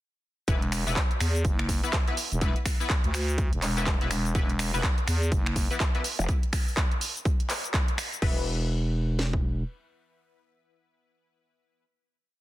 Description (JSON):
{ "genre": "bass house", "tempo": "124 BPM", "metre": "4/4", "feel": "swing 60% on 16ths", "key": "unclear", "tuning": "A4 = 439 Hz", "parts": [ { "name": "band-passed chord stab", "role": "stabs", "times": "0.5-11.8 s", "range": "E3 to B4", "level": "-35 LUFS", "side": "left 4 dB", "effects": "analog chorus, sidechain pumping, tape echo" }, { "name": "growling FM bass", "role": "bass", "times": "0.5-9.6 s", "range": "E1 to E2", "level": "-27 LUFS", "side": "equal", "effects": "overdrive, sidechain pumping" }, { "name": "house drum kit", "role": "drums", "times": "0.5-9.4 s", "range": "kick drum, snare drum", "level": "-26 LUFS", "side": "equal", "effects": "overdrive" }, { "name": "house drum kit", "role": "drums", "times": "0.5-8.3 s", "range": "cabasa, crash cymbal, finger snaps, handclaps, hi-hat", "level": "-31 LUFS", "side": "equal", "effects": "overdrive" }, { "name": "growl bass", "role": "bass", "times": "6.2-6.3 s", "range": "E1", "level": "-26 LUFS", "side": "equal", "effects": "chorus, overdrive, sidechain pumping" } ], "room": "little or no reverb", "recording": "dense, heavily limited modern master", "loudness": "-24 LUFS", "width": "side -16 dB against mid", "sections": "0.5-8.2 drop; 8.2-12.1 final chord", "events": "drop 0.5-8.2", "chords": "0.5 E5" }